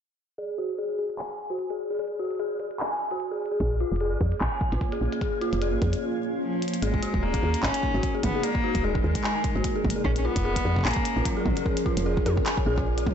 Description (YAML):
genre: IDM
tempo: 149 BPM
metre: 4/4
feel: swing 56% on 16ths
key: unclear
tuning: A4 = 440 Hz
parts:
  - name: dark detuned synth bell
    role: arpeggios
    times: 0.4-13.0 s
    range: E#4 to G#5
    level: -30 LUFS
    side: left 1 dB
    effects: chorus, phaser, low-pass filter, dub echo
  - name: glitchy drum kit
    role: drums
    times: 0.4-13.1 s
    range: handclaps, hi-hat, toms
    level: -33 LUFS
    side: equal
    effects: low-pass filter on hats, small room reverb, low-pass filter on snare, low-pass filter on toms, digital delay
  - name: granular cloud pad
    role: sustained chords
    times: 4.3-13.1 s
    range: G#3 to C#5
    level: -32 LUFS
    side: right 1 dB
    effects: built-in reverb
  - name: woody FM bass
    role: bass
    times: 3.6-13.1 s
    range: D#1 to E#2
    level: -27 LUFS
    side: equal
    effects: none
  - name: electronic kick drum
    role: drums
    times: 3.6-13.1 s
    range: none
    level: -29 LUFS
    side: equal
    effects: small room reverb
  - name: rich cello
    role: melody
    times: 6.4-12.5 s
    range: E#3 to C#4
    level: -30 LUFS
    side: left 2 dB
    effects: vintage 12-bit sampler grit, digital delay
room: moderate echo chamber reverb, RT60 1.3 s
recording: blown-out, overdriven recording, overdrive, low-pass filter, nothing above 7.9 kHz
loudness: -24 LUFS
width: side -8 dB against mid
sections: 0.4-6.8 A section; 6.8-13.1 B section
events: filter sweep on drum 0.4-6.8; filter sweep on synth bell 0.4-6.8; filter sweep 0.4-6.8; break 6.0-6.8; drum fill 6.6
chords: 0.4 F#sus2; 3.6 A#m; 6.8 G#sus2; 10.0 A#m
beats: | 0.38 0.78 1.19 1.59 | 1.99 2.40 2.80 3.20 | 3.60 4.01 4.41 4.81 | 5.21 5.62 6.02 6.42 | 6.83 7.23 7.63 8.03 | 8.44 8.84 9.24 9.64 | 10.05 10.45 10.85 11.25 | 11.66 12.06 12.46 12.87